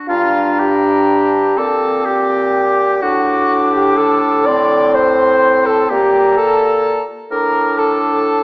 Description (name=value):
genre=classical, slow romantic movement for wind quintet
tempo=42 BPM (dotted quarters)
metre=6/8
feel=rubato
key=G minor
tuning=A4 = 440 Hz
part: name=clear oboe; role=second line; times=0.0-8.4 s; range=F4 to D5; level=-19 LUFS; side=left 1 dB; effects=none
part: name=warm clarinet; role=accompaniment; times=0.0-8.4 s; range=Bb3 to D4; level=-22 LUFS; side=right 1 dB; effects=none
part: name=concert flute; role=melody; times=0.1-8.4 s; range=Bb5 to D6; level=-19 LUFS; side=left 1 dB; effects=none
part: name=warm French horn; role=accompaniment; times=0.1-8.4 s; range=F4 to D5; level=-15 LUFS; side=equal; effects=none
part: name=warm bassoon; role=bass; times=0.1-8.4 s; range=G2 to Bb2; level=-19 LUFS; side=equal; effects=none
room=wet recital hall reverb, RT60 1.5 s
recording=small speaker sound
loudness=-11 LUFS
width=side -25 dB against mid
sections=0.1-8.4 A section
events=none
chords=0.1 Gm; 3.0 D5/A; 5.9 Gmadd9